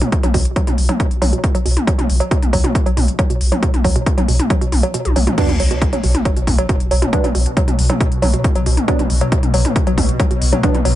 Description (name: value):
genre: driving peak-time techno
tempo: 137 BPM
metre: 4/4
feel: straight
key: B minor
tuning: A4 = 441 Hz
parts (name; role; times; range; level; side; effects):
- woody wave-folded pluck; riff; 0.0-10.9 s; B2 to F#3; -22 LUFS; right 1 dB; chorus, sidechain pumping, digital delay
- techno drum kit; drums; 0.0-10.9 s; crash cymbal, hi-hat, toms; -22 LUFS; left 1 dB; sidechain pumping on hats, sidechain pumping on toms, sidechain pumping on cymbals
- electronic kick drum; drums; 0.1-10.7 s; none; -18 LUFS; equal; none
- warm sub bass; bass; 0.2-11.0 s; B1; -18 LUFS; equal; overdrive, sidechain pumping, low-pass filter
- wavetable chord stab; stabs; 5.4-10.8 s; F#3 to D4; -23 LUFS; right 3 dB; sidechain pumping, dub echo
- swarming drone; drone; 6.6-11.0 s; B2; -24 LUFS; left 1 dB; built-in reverb, sidechain pumping
- sub drop; sound effects; 5.4-7.1 s; none; -24 LUFS; equal; none
room: light reverb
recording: nothing above 10.9 kHz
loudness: -14 LUFS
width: side -13 dB against mid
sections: 0.0-5.4 A section; 5.4-11.0 B section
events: kick drops out 4.9-5.4; drum fill 5.0-5.4; drop 5.4-11.0; impact 5.4-7.1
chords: 0.0 B5